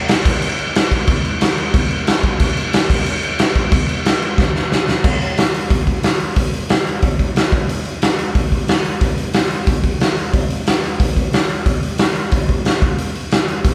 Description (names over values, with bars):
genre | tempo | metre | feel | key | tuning
punk | 181 BPM | 4/4 | straight | none | none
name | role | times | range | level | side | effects
raw garage drum kit | drums | 0.1-13.7 s | crash cymbal, hi-hat, kick drum, snare drum | -17 LUFS | equal | none
room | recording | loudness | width
light reverb | band playing live in one room | -17 LUFS | mono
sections
0.0-5.0 A section; 5.0-13.7 B section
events
drum fill 4.4-5.0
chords
none